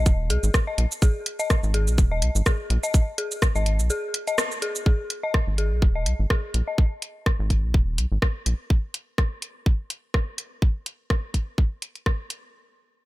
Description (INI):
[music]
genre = minimal techno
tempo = 125 BPM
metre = 4/4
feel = swing 55% on 16ths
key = G# minor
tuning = A4 = 443 Hz
[part]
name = rubbery square bass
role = bass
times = 0.0-8.5 s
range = D#1 to B1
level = -22 LUFS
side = equal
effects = sidechain pumping
[part]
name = electronic kick drum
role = drums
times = 0.1-12.2 s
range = none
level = -20 LUFS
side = equal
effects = none
[part]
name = garage drum kit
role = drums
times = 0.1-12.4 s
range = hi-hat, rim click, shaker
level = -28 LUFS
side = equal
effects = none
[part]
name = dark detuned synth bell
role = riff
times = 0.3-6.7 s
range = G#4 to D#5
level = -30 LUFS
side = left 3 dB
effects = chorus, sidechain pumping, low-pass filter, tape echo
[sound]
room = digital ambience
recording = none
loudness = -22 LUFS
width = side -18 dB against mid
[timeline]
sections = 0.0-4.9 A section; 4.9-12.5 B section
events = drop 0.0-4.9; break 3.9-4.9; band accent 4.4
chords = 0.0 G#5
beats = 0.06 0.54 | 1.02 1.50 1.98 2.46 | 2.94 3.42 3.90 4.38 | 4.86 5.34 5.82 6.30 | 6.78 7.26 7.74 8.22 | 8.70 9.18 9.66 10.14 | 10.62 11.10 11.58 12.06